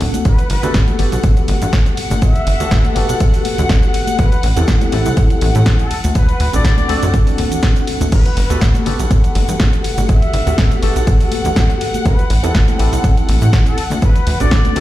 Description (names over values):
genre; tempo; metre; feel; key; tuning
filtered disco house; 122 BPM; 4/4; swing 54% on 16ths; G major; A4 = 440 Hz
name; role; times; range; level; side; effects
tine electric piano; accompaniment; 0.0-14.8 s; B3 to A4; -22 LUFS; equal; medium stereo tremolo, phaser, sidechain pumping
dark studio string section; sustained chords; 0.0-14.8 s; F#5; -26 LUFS; left 4 dB; sidechain pumping
plucky analog bass; bass; 0.0-14.8 s; D1 to A2; -16 LUFS; equal; tube saturation, sidechain pumping
house drum kit; drums; 0.0-14.8 s; crash cymbal, hi-hat, ride cymbal, shaker, snare drum; -24 LUFS; equal; sidechain pumping on hats, sidechain pumping on perc, sidechain pumping on cymbals
congas and egg shaker; percussion; 0.1-14.7 s; none; -27 LUFS; left 4 dB; sidechain pumping on perc
mellow trumpet section; melody; 0.2-14.8 s; A4 to E5; -26 LUFS; left 1 dB; vintage 12-bit sampler grit, sidechain pumping, tape echo
electronic kick drum; drums; 0.3-14.6 s; none; -13 LUFS; equal; none
room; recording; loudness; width
little or no reverb; played on a big sound system in a bare room, large studio reverb; -12 LUFS; side -15 dB against mid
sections
0.0-14.8 A section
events
none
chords
0.3 Gmaj9; 4.2 Am7; 5.9 D7; 8.1 Gmaj9; 12.1 Am7; 13.8 D7